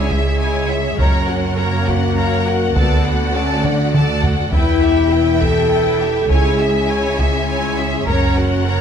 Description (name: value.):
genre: cinematic, epic orchestral film score.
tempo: 68 BPM (dotted quarters).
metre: 6/8.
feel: straight.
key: unclear.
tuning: A4 = 438 Hz.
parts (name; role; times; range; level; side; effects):
rich symphonic violin section; melody; 0.0-8.8 s; E5 to A#5; -26 LUFS; left 2 dB; none.
rich symphonic violin section; second line; 0.0-8.8 s; G4 to E5; -26 LUFS; left 2 dB; none.
warm symphonic viola section; accompaniment; 0.0-8.8 s; E4 to A#4; -27 LUFS; right 2 dB; none.
mellow French horn section; sustained chords; 0.0-8.8 s; G#3 to A4; -19 LUFS; left 4 dB; none.
warm symphonic string section; sustained chords; 0.0-8.8 s; A3 to G#5; -24 LUFS; equal; none.
dark studio double bass section; bass; 0.0-8.8 s; E1 to D2; -23 LUFS; right 3 dB; none.
rich symphonic cello section; bass; 0.0-8.8 s; C#2 to F#2; -22 LUFS; right 3 dB; none.
taiko ensemble; drums; 0.1-8.6 s; none; -20 LUFS; equal; none.
room: moderate scoring stage reverb, RT60 1.6 s.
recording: none.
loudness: -14 LUFS.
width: side -8 dB against mid.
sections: 0.0-8.8 A section.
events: drum fill 3.6-4.5.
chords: 0.0 C#m; 1.0 F#; 2.8 D; 4.5 Em; 6.3 C#m; 8.1 F#.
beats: 0.10 | 0.99 1.88 | 2.76 3.65 | 4.53 5.42 | 6.30 7.19 | 8.07.